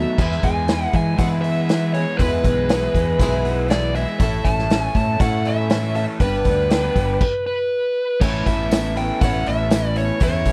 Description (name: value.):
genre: folk rock and heartland rock.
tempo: 120 BPM.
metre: 4/4.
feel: straight.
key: unclear.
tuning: A4 = 439 Hz.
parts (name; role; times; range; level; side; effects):
dark smooth lead guitar; melody; 0.0-10.5 s; B4 to A5; -25 LUFS; equal; overdrive.
picked twelve-string acoustic guitar; accompaniment; 0.0-10.5 s; E2 to B4; -29 LUFS; equal; none.
crunchy overdriven guitar; riff; 0.0-10.5 s; E2 to F#4; -30 LUFS; equal; none.
fingered electric bass; bass; 0.0-10.5 s; G1 to E3; -25 LUFS; equal; none.
tonewheel organ; sustained chords; 0.2-10.5 s; B4 to E6; -40 LUFS; equal; none.
vintage drum kit; drums; 0.2-10.5 s; crash cymbal, hi-hat, kick drum, snare drum; -23 LUFS; equal; none.
tambourine; percussion; 8.7-9.8 s; none; -41 LUFS; equal; none.
room: little or no reverb.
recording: none.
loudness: -20 LUFS.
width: mono.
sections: 0.2-8.2 A section; 8.2-10.5 B section.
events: stop 7.2-8.2.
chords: 0.2 E; 4.2 A; 6.2 G; 8.2 Aadd9.